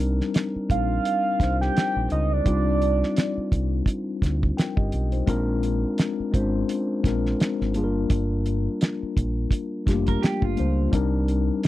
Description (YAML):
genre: R&B, neo-soul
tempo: 85 BPM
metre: 4/4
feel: swing 56% on 16ths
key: C minor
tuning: A4 = 440 Hz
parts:
  - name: mellow tine electric piano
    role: accompaniment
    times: 0.0-11.7 s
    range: G3 to G5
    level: -26 LUFS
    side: left 3 dB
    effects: slow stereo tremolo
  - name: deep dub fingered electric bass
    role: bass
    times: 0.0-11.5 s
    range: F1 to D2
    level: -25 LUFS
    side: right 1 dB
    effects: none
  - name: cloth-damped thuddy drum kit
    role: drums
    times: 0.0-11.7 s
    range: hi-hat, kick drum, snare drum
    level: -23 LUFS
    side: right 1 dB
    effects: none
  - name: soft octave-layered synth lead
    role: melody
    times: 0.7-3.7 s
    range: D5 to G5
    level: -25 LUFS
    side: right 3 dB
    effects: chorus, phaser, slapback echo
  - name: electric guitar through a small old amp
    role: second line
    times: 10.1-10.9 s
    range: F4 to Bb4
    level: -32 LUFS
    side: right 8 dB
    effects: none
room: little or no reverb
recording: dry, close 1970s-style studio recording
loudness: -21 LUFS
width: side -15 dB against mid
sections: 0.0-11.7 A section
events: none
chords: 0.0 Cm9; 5.3 Bb9; 7.7 Gm7; 10.9 Cm9